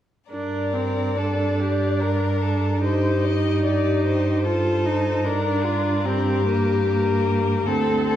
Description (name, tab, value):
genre	classical, slow romantic movement for string quartet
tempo	74 BPM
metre	3/4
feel	uneven beats, rubato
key	G minor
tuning	A4 = 438 Hz
part	rich violin	melody	0.3-8.2 s	A4 to Eb5	-28 LUFS	left 4 dB	none
part	rich violin	second line	0.3-8.2 s	F4 to Bb4	-26 LUFS	left 5 dB	none
part	clear viola	accompaniment	0.3-8.2 s	Bb3 to F4	-25 LUFS	right 2 dB	none
part	rich cello	bass	0.3-8.2 s	D2 to G2	-24 LUFS	right 2 dB	none
room	wet recital hall reverb, RT60 1.4 s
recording	heard from further back in the room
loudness	-19 LUFS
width	side -11 dB against mid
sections	0.3-8.2 A section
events	none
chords	0.3 Gm; 2.8 Am7b5/G; 5.2 Gm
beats	| 0.32 1.17 2.01 | 2.84 3.66 4.45 | 5.25 6.05 6.85 | 7.66